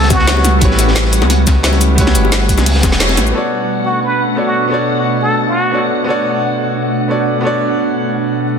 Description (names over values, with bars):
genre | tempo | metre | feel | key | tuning
liquid drum and bass | 176 BPM | 4/4 | swing 53% on 16ths | B minor | A4 = 440 Hz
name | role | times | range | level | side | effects
trumpet with plunger mute | melody | 0.0-0.6, 3.9-5.8 s | F#4 to B4 | -18 LUFS | equal | ping-pong delay
clear baby grand piano | accompaniment | 0.0-8.6 s | G3 to D5 | -18 LUFS | equal | tape echo
glassy FM pad | sustained chords | 0.0-8.6 s | B2 to F#5 | -18 LUFS | right 1 dB | ensemble chorus, built-in reverb
smooth synth bass | bass | 0.0-3.3 s | E1 to C#2 | -14 LUFS | equal | none
crunchy breakbeat drum kit | drums | 0.0-3.3 s | hi-hat, snare drum | -22 LUFS | equal | high-pass filter on hats, high-pass filter on snare, high-pass filter on room
drum and bass drum kit | drums | 0.1-3.3 s | cabasa, hi-hat, snare drum | -17 LUFS | equal | overdrive
electronic kick drum | drums | 0.1-2.9 s | none | -14 LUFS | equal | overdrive
bongos | percussion | 0.1-3.2 s | none | -24 LUFS | left 8 dB | none
room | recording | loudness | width
moderate lush hall reverb, RT60 1.6 s, small room reverb | dense, heavily limited modern master | -11 LUFS | side -7 dB against mid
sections
0.0-3.3 A section; 3.3-8.6 B section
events
band accent 3.0; filter sweep on ambient pad 3.3-8.6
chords
0.0 A13; 3.3 Bm9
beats
0.28 | 0.62 0.96 1.30 1.64 | 1.98 2.32 2.66 3.00 | 3.35 3.69 4.03 4.37 | 4.71 5.05 5.39 5.73 | 6.07 6.41 6.75 7.10 | 7.44 7.78 8.12 8.46